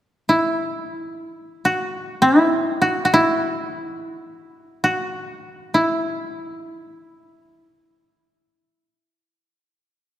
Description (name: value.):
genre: japanese traditional.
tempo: free time.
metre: none.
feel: none.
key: unclear.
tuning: A4 = 440 Hz.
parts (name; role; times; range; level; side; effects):
koto; melody; 0.3-9.5 s; E4 to F#4; -18 LUFS; equal; none.
room: moderate concert hall reverb, RT60 2.5 s.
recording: none.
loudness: -18 LUFS.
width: side -12 dB against mid.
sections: 0.0-10.2 A section.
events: none.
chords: none.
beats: free time.